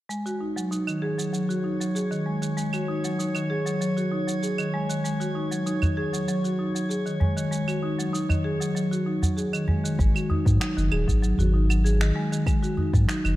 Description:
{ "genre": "organic downtempo", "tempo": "97 BPM", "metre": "4/4", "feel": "straight", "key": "unclear", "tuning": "A4 = 439 Hz", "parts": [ { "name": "marimba with medium mallets", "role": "arpeggios", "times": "0.1-13.4 s", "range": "Eb3 to Ab4", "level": "-26 LUFS", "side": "equal", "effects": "low-pass filter, tape echo" }, { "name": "electronic shaker, claves and finger snaps", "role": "drums", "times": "0.1-13.4 s", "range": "none", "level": "-34 LUFS", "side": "right 4 dB", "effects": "none" }, { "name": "drifting glass-harmonics texture", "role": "texture", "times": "0.9-10.0 s", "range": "Db5", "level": "-36 LUFS", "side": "left 1 dB", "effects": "chorus, built-in reverb" }, { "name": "udu", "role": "percussion", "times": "5.8-12.9 s", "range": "none", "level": "-25 LUFS", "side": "right 1 dB", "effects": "none" }, { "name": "warm sub bass", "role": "bass", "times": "10.0-13.4 s", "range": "Eb1 to Ab2", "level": "-21 LUFS", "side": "equal", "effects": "sidechain pumping" }, { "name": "electronic kick drum", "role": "drums", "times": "10.0-13.1 s", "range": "none", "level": "-24 LUFS", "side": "equal", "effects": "none" } ], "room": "light reverb, digital ambience", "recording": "dark, warm production", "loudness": "-23 LUFS", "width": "side -16 dB against mid", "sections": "0.1-10.0 A section; 10.0-13.4 B section", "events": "none", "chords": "0.1 Ab7sus4; 10.0 Ab7(no3)" }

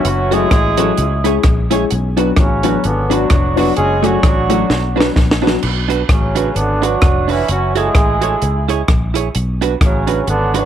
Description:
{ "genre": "ska", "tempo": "129 BPM", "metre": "4/4", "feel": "swing 58% on 8ths", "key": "B dorian", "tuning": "A4 = 439 Hz", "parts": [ { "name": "dark horn section", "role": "melody", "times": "0.0-10.7 s", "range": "C#3 to G#4", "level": "-18 LUFS", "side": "right 2 dB", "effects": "tape echo" }, { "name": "fingered electric bass", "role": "bass", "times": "0.0-10.7 s", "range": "E#1 to C#2", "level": "-18 LUFS", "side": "equal", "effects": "none" }, { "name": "compact cocktail drum kit", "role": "drums", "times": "0.0-10.6 s", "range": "crash cymbal, hi-hat, kick drum, rim click, snare drum", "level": "-16 LUFS", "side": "equal", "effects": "none" }, { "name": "vintage hollow-body jazz guitar", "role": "accompaniment", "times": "0.3-10.7 s", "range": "A3 to C#5", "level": "-21 LUFS", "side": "right 10 dB", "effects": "none" }, { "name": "dark upright piano", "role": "stabs", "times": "0.3-5.6 s", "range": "F#3 to G#4", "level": "-19 LUFS", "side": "left 11 dB", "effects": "tape echo" } ], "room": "light reverb, small room ambience", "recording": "1960s-style stereo with parts hard left and right", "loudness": "-12 LUFS", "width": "side -10 dB against mid", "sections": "0.0-5.6 A section; 5.6-10.7 A section", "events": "drum fill 4.7-5.6", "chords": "0.0 F#m; 1.0 C#m; 1.9 Bm; 3.8 F#m; 4.7 Bm; 7.5 F#m; 8.4 C#m; 9.3 Bm" }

